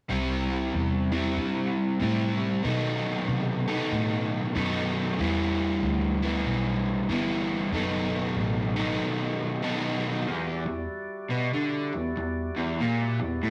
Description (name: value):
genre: rock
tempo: 94 BPM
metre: 4/4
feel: swing 63% on 8ths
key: E minor from 10.3 s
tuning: A4 = 440 Hz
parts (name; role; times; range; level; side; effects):
- overdriven semi-hollow guitar; riff; 0.1-13.5 s; E2 to A4; -28 LUFS; equal; none
- vintage muted fingered electric bass; bass; 0.1-9.0 s; F#1 to C3; -34 LUFS; equal; none
- percussive tonewheel organ; sustained chords; 10.3-13.5 s; G3 to D#5; -37 LUFS; equal; slow rotary speaker, overdrive
room: moderate stone room reverb, RT60 1.0 s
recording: rough rehearsal-room recording, warm saturation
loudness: -28 LUFS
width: mono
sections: 0.1-10.3 A section; 10.3-13.5 B section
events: none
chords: 0.1 C; 2.7 B7b9; 5.2 Em7; 7.7 B7; 10.3 Em9